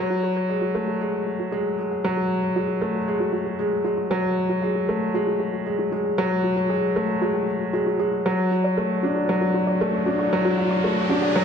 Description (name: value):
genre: piano and strings electronica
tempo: 116 BPM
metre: 4/4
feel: straight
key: F# minor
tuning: A4 = 438 Hz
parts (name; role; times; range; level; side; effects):
- analog pluck; arpeggios; 0.0-11.3 s; F#4 to D5; -30 LUFS; equal; chorus, ping-pong delay
- warm upright piano; riff; 0.0-11.4 s; F#3 to D4; -21 LUFS; equal; ping-pong delay
- warm sub bass; bass; 0.0-11.4 s; none; barely audible; none; none
- riser; sound effects; 9.6-11.4 s; none; -31 LUFS; equal; none
room: wet recital hall reverb, RT60 1.7 s, digital ambience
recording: dark, warm production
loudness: -21 LUFS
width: side -7 dB against mid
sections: 0.0-11.4 A section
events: build-up 0.0-11.4; filter sweep on synth arpeggio sound 0.0-11.4; riser 9.6-11.4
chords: 0.0 F#madd9; 8.3 D